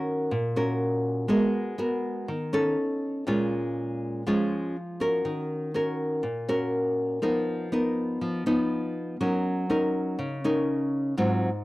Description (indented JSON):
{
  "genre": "bossa nova",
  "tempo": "122 BPM",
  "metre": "4/4",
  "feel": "straight",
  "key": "Eb minor",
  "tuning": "A4 = 439 Hz",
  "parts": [
    { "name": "nylon-string guitar", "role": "solo", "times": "0.0-11.6 s", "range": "Ab2 to Bb4", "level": "-25 LUFS", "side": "equal", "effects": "none" }
  ],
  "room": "small room ambience",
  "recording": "dry, close 1970s-style studio recording",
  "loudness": "-25 LUFS",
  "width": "side -18 dB against mid",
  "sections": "0.0-11.6 A section",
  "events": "none",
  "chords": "0.0 Ebm7; 1.3 Abm9; 2.8 Dbsus2; 3.3 Bbm7; 5.2 Ebm7; 7.2 Bmaj7#11/E#; 8.7 B; 9.2 Gb6"
}